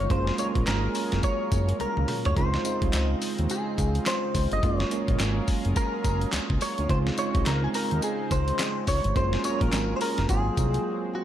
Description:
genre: R&B, new jack swing.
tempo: 106 BPM.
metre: 4/4.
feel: swing 60% on 16ths.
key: Db major.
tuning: A4 = 442 Hz.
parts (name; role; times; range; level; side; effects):
direct-recorded clean electric guitar; melody; 0.0-11.2 s; Gb4 to Eb5; -30 LUFS; left 1 dB; analog chorus, analog delay.
bell-like tine electric piano; accompaniment; 0.0-11.2 s; Gb3 to F4; -31 LUFS; right 5 dB; medium stereo tremolo.
lush unison pad; sustained chords; 0.0-11.2 s; Db3 to Bb4; -35 LUFS; left 2 dB; chorus.
fat analog bass; bass; 0.0-10.8 s; Gb1 to Eb2; -26 LUFS; equal; none.
dusty soul sampler-style drum kit; drums; 0.1-10.8 s; handclaps, hi-hat, kick drum, snare drum, tambourine, toms; -29 LUFS; equal; none.
room: light reverb.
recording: lossy compression artefacts.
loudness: -23 LUFS.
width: side -11 dB against mid.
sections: 0.0-11.2 A section.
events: drum fill 1.8-2.4; break 10.9-11.2.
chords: 0.1 Gbmaj7; 2.4 Dbmaj7; 4.6 Gbmaj7; 6.9 Dbmaj7; 9.2 Gbmaj7; 10.3 Ab13.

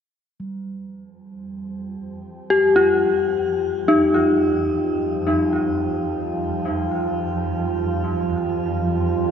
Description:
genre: dark ambient drone.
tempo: free time.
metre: none.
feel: none.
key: unclear.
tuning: A4 = 437 Hz.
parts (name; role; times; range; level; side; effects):
deep dark ambient pad; sustained chords; 1.7-9.3 s; F4 to G5; -27 LUFS; right 4 dB; chorus, built-in reverb, shimmer reverb.
swarming drone; drone; 1.7-9.3 s; F2 to F3; -27 LUFS; right 2 dB; built-in reverb.
bronze singing bowl; texture; 0.4-9.3 s; G3; -36 LUFS; right 4 dB; none.
dark detuned synth bell; arpeggios; 2.5-9.3 s; Eb4 to G4; -19 LUFS; left 2 dB; chorus, tremolo, analog delay, shimmer reverb.
room: wet plate reverb, RT60 3.6 s.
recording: echo-heavy mix.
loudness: -18 LUFS.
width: side -8 dB against mid.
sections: 0.4-9.3 A section.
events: fade-in on synth drone 0.4-9.3; fade-in on ambient pad 0.4-9.3; fade-in on singing bowl 0.4-9.3.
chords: 0.4 Fsus2.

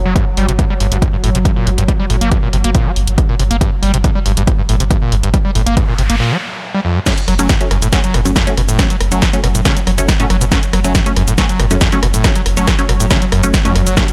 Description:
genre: driving peak-time techno.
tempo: 139 BPM.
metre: 4/4.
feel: straight.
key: unclear.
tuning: A4 = 440 Hz.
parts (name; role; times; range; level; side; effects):
saturated sub bass; bass; 0.0-14.0 s; F#1 to G1; -19 LUFS; equal; tube saturation, sidechain pumping, low-pass filter.
swarming drone; drone; 0.0-14.1 s; F#3; -29 LUFS; equal; none.
screaming distorted acid line; riff; 0.1-14.0 s; F#1 to Bb3; -21 LUFS; equal; distortion, chorus, sidechain pumping, tape echo.
electronic kick drum; drums; 0.2-14.1 s; none; -17 LUFS; equal; none.
punchy analog drum machine; drums; 0.2-14.1 s; crash cymbal, hi-hat, rim click, shaker, snare drum; -21 LUFS; equal; none.
noise sweep; sound effects; 5.8-7.1 s; none; -28 LUFS; equal; none.
filtered dub chord stab; stabs; 7.1-14.0 s; F#3 to D4; -22 LUFS; equal; phaser, sidechain pumping, tape echo.
room: little or no reverb.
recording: none.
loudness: -14 LUFS.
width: mono.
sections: 0.0-7.1 A section; 7.1-14.1 B section.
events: noise sweep 5.8-7.1; break 6.2-7.1; drop 7.1-14.1.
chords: 0.2 Gm; 7.1 F#m.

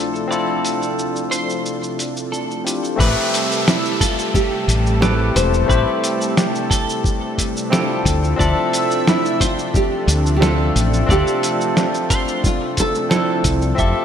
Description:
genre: sunset chillout.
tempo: 89 BPM.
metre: 4/4.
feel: straight.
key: unclear.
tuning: A4 = 440 Hz.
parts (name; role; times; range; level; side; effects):
barky tine electric piano; accompaniment; 0.0-14.0 s; F3 to E5; -21 LUFS; moving between left 4 dB and right 3 dB; auto-pan, digital delay.
lush unison pad; sustained chords; 0.0-14.0 s; C3 to E5; -26 LUFS; left 1 dB; chorus.
woody fretless electric bass; bass; 0.0-13.9 s; E1 to D2; -17 LUFS; equal; none.
dusty soul sampler-style drum kit; drums; 0.2-13.9 s; crash cymbal, hi-hat, shaker, snare drum; -22 LUFS; equal; none.
clean electric guitar; arpeggios; 0.3-14.0 s; G4 to E5; -28 LUFS; right 2 dB; analog chorus, digital delay.
electronic kick drum; drums; 3.0-13.9 s; none; -20 LUFS; equal; none.
downlifter; sound effects; 3.0-8.4 s; none; -27 LUFS; equal; none.
nylon-string guitar; melody; 3.7-13.6 s; E4 to C5; -22 LUFS; right 1 dB; digital delay.
room: moderate lush hall reverb, RT60 1.7 s.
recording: bright 1980s-style digital production.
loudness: -16 LUFS.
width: side -8 dB against mid.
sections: 0.0-3.0 A section; 3.0-14.0 B section.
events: none.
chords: 0.0 Dm9; 3.0 Am9; 8.1 Dm9.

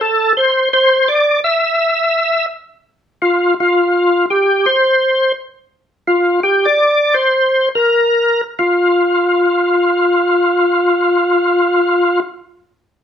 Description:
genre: jazz.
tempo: 168 BPM.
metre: 4/4.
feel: swing 65% on 8ths.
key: F major.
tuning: A4 = 442 Hz.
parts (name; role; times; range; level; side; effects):
percussive tonewheel organ; solo; 0.0-12.2 s; F4 to E5; -11 LUFS; equal; slow rotary speaker, overdrive, chorus vibrato.
room: wet studio reverb, RT60 0.7 s.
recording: band playing live in one room.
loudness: -12 LUFS.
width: side -9 dB against mid.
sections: 0.0-2.8 A section; 2.8-8.6 B section; 8.6-11.4 C section.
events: none.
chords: none.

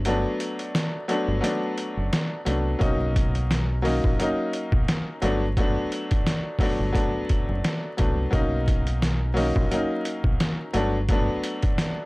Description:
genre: hip hop, boom-bap hip-hop.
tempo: 87 BPM.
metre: 4/4.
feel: swing 56% on 16ths.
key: unclear.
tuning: A4 = 443 Hz.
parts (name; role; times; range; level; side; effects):
deep dub fingered electric bass; bass; 0.0-11.3 s; F#1 to C2; -26 LUFS; equal; none.
bright grand piano; accompaniment; 0.1-12.1 s; F#3 to D#4; -26 LUFS; left 1 dB; high-pass filter, low-pass filter.
trip hop sampler-style drum kit; drums; 0.1-12.0 s; hi-hat, kick drum, snare drum; -25 LUFS; equal; none.
room: little or no reverb.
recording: dry, gritty hardware recording, vinyl crackle.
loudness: -22 LUFS.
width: side -23 dB against mid.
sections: 0.0-12.1 A section.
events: break 0.0-2.8.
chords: 0.0 Gmaj9; 2.8 Bmaj9; 5.2 Gmaj9; 8.3 Bmaj9; 10.7 Gmaj9.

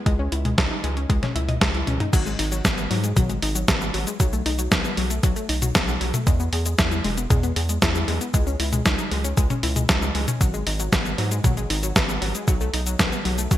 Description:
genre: italo disco.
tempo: 116 BPM.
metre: 4/4.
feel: straight.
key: G# minor.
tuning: A4 = 440 Hz.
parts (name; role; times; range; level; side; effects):
wide unison pluck; arpeggios; 0.0-13.6 s; F#3 to D#5; -28 LUFS; left 3 dB; ping-pong delay.
round analog bass; bass; 0.1-13.6 s; E1 to G#2; -26 LUFS; equal; none.
detuned 8-bit digital drum machine; drums; 0.1-13.6 s; cabasa, crash cymbal, hi-hat, snare drum, toms; -23 LUFS; equal; gated reverb.
electronic kick drum; drums; 0.1-13.6 s; none; -22 LUFS; equal; none.
room: light reverb.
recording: bright 1980s-style digital production.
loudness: -20 LUFS.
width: side -13 dB against mid.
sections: 0.0-2.1 A section; 2.1-13.6 B section.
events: drum fill 1.9.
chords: 0.1 C#madd9; 2.1 G#m7; 4.2 B7; 6.3 E; 8.3 C#madd9; 10.4 G#m7; 12.5 B7.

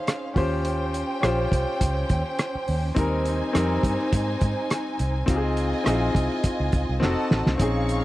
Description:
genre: lush 1970s-style soul.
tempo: 104 BPM.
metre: 4/4.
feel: swing 54% on 16ths.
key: unclear.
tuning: A4 = 440 Hz.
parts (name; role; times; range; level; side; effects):
warm symphonic violin section; second line; 0.0-8.0 s; Db4 to Db6; -29 LUFS; right 1 dB; none.
clear concert grand piano; accompaniment; 0.0-8.0 s; G3 to C5; -27 LUFS; left 2 dB; none.
cloth-damped thuddy drum kit; drums; 0.1-8.0 s; hi-hat, kick drum, rim click, snare drum; -24 LUFS; equal; none.
vintage muted fingered electric bass; bass; 0.4-8.0 s; F1 to Ab2; -26 LUFS; equal; none.
room: little or no reverb.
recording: dry, close 1970s-style studio recording.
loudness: -22 LUFS.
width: side -16 dB against mid.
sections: 0.0-8.0 A section.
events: drum fill 7.0-7.6.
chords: 0.4 Eb13; 3.0 Abmaj9/Eb; 5.3 Dbmaj9; 7.0 F7b9.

